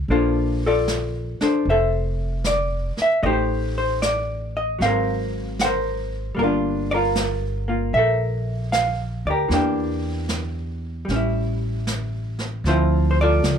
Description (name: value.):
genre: jazz ballad.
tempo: 76 BPM.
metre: 4/4.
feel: swing 69% on 8ths.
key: unclear.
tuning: A4 = 440 Hz.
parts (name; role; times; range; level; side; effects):
vintage hollow-body jazz guitar; accompaniment; 0.0-13.6 s; E3 to F#5; -21 LUFS; left 1 dB; none.
upright bass; bass; 0.0-13.6 s; F1 to E2; -24 LUFS; equal; none.
jazz brush drum kit; drums; 0.1-13.6 s; brushed snare drum, hi-hat, snare drum; -30 LUFS; right 2 dB; none.
room: little or no reverb.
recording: none.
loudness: -20 LUFS.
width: side -7 dB against mid.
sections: 0.0-13.6 A section.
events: none.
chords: 0.1 Bbmaj9; 3.2 Am7b5; 4.8 G#13; 6.4 Gm9; 9.5 Em7b5; 11.1 A7; 12.6 Dm9.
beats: | 0.08 0.86 1.65 2.43 | 3.22 4.00 4.79 5.58 | 6.36 7.15 7.93 8.72 | 9.50 10.29 11.07 11.85 | 12.64 13.42.